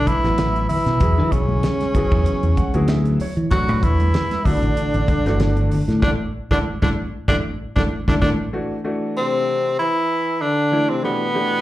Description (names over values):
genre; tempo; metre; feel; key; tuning
electric jazz fusion; 96 BPM; 4/4; swing 54% on 16ths; A major, D mixolydian from 8.5 s; A4 = 440 Hz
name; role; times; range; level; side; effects
bright tenor saxophone; melody; 0.0-11.6 s; B3 to F#4; -22 LUFS; equal; slapback echo
warm trombone; second line; 0.0-11.6 s; B2 to F#3; -26 LUFS; left 2 dB; slapback echo
fingered electric bass; bass; 0.0-8.3 s; G1 to E3; -20 LUFS; equal; none
damped 70s drum kit; drums; 0.1-8.4 s; hi-hat, kick drum, snare drum; -22 LUFS; equal; none
congas; percussion; 0.1-8.4 s; none; -29 LUFS; equal; slapback echo
clear grand piano; accompaniment; 0.2-11.6 s; E3 to F#5; -26 LUFS; equal; slapback echo
room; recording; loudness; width
light reverb; live gig heard through the venue's PA, club reverb; -17 LUFS; side -15 dB against mid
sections
0.0-8.5 A section; 8.5-11.6 B section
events
grand piano fill 2.3-3.5, 6.7-8.5; band accent 6.0-8.5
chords
0.0 B5; 1.0 E13; 3.5 Asus4; 8.5 D7; 11.0 Asus2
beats
0.38 | 1.01 1.64 2.26 2.89 | 3.52 4.14 4.77 5.40 | 6.02 6.65 7.28 7.90 | 8.53 9.15 9.78 10.40 | 11.03